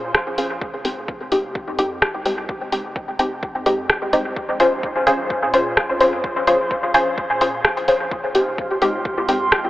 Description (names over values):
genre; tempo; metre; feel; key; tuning
dub techno; 128 BPM; 4/4; swing 54% on 16ths; F minor; A4 = 440 Hz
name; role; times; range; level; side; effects
round analog bass; bass; 0.0-9.7 s; F1 to Bb2; -39 LUFS; equal; sidechain pumping
electronic kick drum; drums; 0.1-9.6 s; none; -29 LUFS; equal; none
punchy analog drum machine; drums; 0.1-9.6 s; hi-hat, rim click; -22 LUFS; equal; dub echo
filtered dub chord stab; stabs; 0.4-9.4 s; Ab3 to C5; -18 LUFS; left 1 dB; chorus, phaser, sidechain pumping, dub echo
drifting glass-harmonics texture; texture; 8.5-9.7 s; F4; -25 LUFS; right 3 dB; chorus, built-in reverb, sidechain pumping
bongos; percussion; 9.2-9.7 s; none; -30 LUFS; right 1 dB; sidechain pumping on perc, dub echo
room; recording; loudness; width
wet huge ambient reverb, RT60 6.3 s; dreamy mix soaked in reverb, telephone sound; -17 LUFS; side -16 dB against mid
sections
0.0-9.7 A section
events
filter sweep on synth stab 0.0-9.7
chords
0.0 Bbm9; 0.6 Fm9; 4.4 Bbm9; 8.1 Fm9